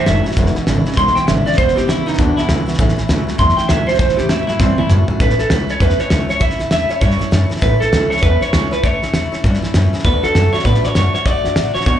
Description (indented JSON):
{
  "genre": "rockabilly",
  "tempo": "198 BPM",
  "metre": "4/4",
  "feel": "swing 61% on 8ths",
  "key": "A major",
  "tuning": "A4 = 440 Hz",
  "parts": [
    { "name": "electric guitar through a small old amp", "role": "melody", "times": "0.0-12.0 s", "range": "C4 to C6", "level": "-18 LUFS", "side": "right 1 dB", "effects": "slapback echo, tape echo" },
    { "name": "picked acoustic archtop guitar", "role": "accompaniment", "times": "0.0-12.0 s", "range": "E2 to F#4", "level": "-24 LUFS", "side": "left 5 dB", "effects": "slapback echo" },
    { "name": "mellow electric guitar", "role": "riff", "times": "0.0-5.2 s", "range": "E2 to F#3", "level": "-21 LUFS", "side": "right 3 dB", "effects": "slapback echo" },
    { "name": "upright bass", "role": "bass", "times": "0.1-12.0 s", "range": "E1 to B2", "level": "-18 LUFS", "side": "equal", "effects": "none" },
    { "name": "cloth-damped thuddy drum kit", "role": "drums", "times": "0.1-11.9 s", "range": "hi-hat, kick drum, snare drum, toms", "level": "-18 LUFS", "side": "equal", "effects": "none" }
  ],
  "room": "little or no reverb",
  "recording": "live gig heard through the venue's PA, club reverb, nothing above 10.4 kHz",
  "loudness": "-13 LUFS",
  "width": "side -10 dB against mid",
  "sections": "0.0-5.2 A section; 5.2-12.0 B section",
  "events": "clean electric guitar solo 0.0-5.2; drum fill 4.6-5.2",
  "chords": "0.4 E; 2.8 A; 10.0 D",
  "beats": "0.07 | 0.38 0.68 0.98 1.28 | 1.58 1.89 2.19 2.49 | 2.79 3.09 3.39 3.69 | 4.00 4.30 4.60 4.90 | 5.21 5.51 5.81 6.11 | 6.42 6.72 7.02 7.32 | 7.63 7.93 8.23 8.54 | 8.84 9.14 9.44 9.75 | 10.05 10.35 10.65 10.96 | 11.26 11.56 11.87"
}